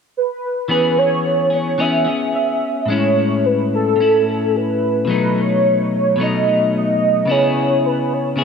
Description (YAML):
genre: indie pop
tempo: 110 BPM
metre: 4/4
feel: swing 55% on 16ths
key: E major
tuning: A4 = 440 Hz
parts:
  - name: warm velvety synth lead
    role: melody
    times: 0.2-8.4 s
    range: A4 to E5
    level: -17 LUFS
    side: right 1 dB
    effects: analog chorus, analog delay
  - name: clean electric guitar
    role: accompaniment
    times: 0.7-8.4 s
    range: A2 to G#4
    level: -18 LUFS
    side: left 2 dB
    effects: analog chorus, vibrato effect, analog delay
room: moderate plate reverb, RT60 3.2 s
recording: echo-heavy mix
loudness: -15 LUFS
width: side -6 dB against mid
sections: 0.7-8.4 A section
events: none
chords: 0.0 N.C.; 0.7 E6; 2.9 Amaj7; 5.1 B7; 7.3 C#m7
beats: 0.14 | 0.69 1.24 1.79 2.33 | 2.88 3.43 3.98 4.52 | 5.07 5.62 6.17 6.71 | 7.26 7.81 8.35